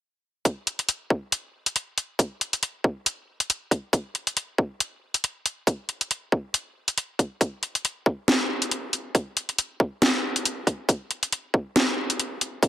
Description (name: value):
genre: deep dubstep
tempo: 138 BPM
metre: 4/4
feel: swing 56% on 16ths, half-time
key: none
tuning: none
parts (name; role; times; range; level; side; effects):
- electronic kick drum; drums; 0.5-12.7 s; none; -22 LUFS; equal; high-pass filter on kick
- garage drum kit; drums; 0.5-12.7 s; hi-hat, snare drum; -22 LUFS; equal; none
room: wet spring reverb, RT60 1.9 s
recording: heavily compressed radio sound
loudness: -24 LUFS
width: side -12 dB against mid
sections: 0.5-12.7 A section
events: none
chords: none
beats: | 0.45 0.89 1.32 1.76 | 2.19 2.63 3.06 3.50 | 3.93 4.37 4.80 5.24 | 5.67 6.11 6.54 6.97 | 7.41 7.84 8.28 8.71 | 9.15 9.58 10.02 10.45 | 10.89 11.32 11.76 12.19 | 12.63